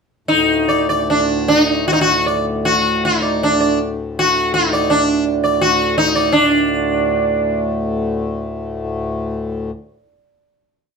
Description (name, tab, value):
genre	indian classical, Hindustani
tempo	149-196 BPM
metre	4/4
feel	straight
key	unclear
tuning	A4 = 440 Hz
part	sitar	melody	0.3-7.6 s	D4 to D5	-14 LUFS	right 1 dB	slapback echo
part	hand-pumped harmonium	drone	0.3-9.7 s	D2 to A2	-22 LUFS	left 3 dB	none
room	wet studio reverb, RT60 0.7 s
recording	none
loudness	-14 LUFS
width	side -5 dB against mid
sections	0.3-6.3 theme; 6.3-8.9 final chord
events	speeding up 0.3-8.9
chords	none